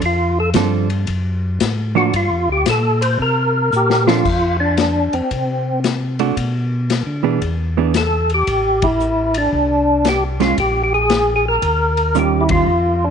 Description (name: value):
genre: soul jazz organ trio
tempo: 114 BPM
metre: 4/4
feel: swing 67% on 8ths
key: F major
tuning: A4 = 436 Hz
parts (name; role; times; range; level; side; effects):
- mellow tonewheel organ; bass; 0.0-13.1 s; A1 to D3; -20 LUFS; equal; slow rotary speaker
- vintage drum kit; drums; 0.0-12.6 s; crash cymbal, hi-hat, kick drum, ride cymbal, snare drum; -24 LUFS; left 6 dB; none
- percussive tonewheel organ; melody; 0.1-13.1 s; C4 to C5; -16 LUFS; equal; slow rotary speaker, chorus vibrato
- hollow-body jazz guitar; accompaniment; 0.5-12.7 s; Eb3 to A4; -19 LUFS; right 10 dB; none
room: light reverb, studio reverb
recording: 1960s-style stereo with parts hard left and right, nothing above 10.9 kHz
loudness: -14 LUFS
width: side -7 dB against mid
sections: 0.0-4.3 A section; 4.3-13.1 B section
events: tonewheel organ solo 0.0-4.3; drum fill 3.7-4.3, 12.2-12.7; band accent 8.7, 12.4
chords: 0.0 F6; 1.1 D; 2.1 Gm7; 3.2 Bbmaj13; 4.3 F5; 6.4 Bm; 7.4 E7; 8.5 Am; 10.6 Gm/Bb; 11.6 Eb9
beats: | 0.03 0.56 1.08 1.61 | 2.14 2.67 3.20 3.72 | 4.25 4.78 5.31 5.83 | 6.36 6.89 7.42 7.95 | 8.47 9.00 9.53 10.05 | 10.58 11.11 11.63 12.16 | 12.68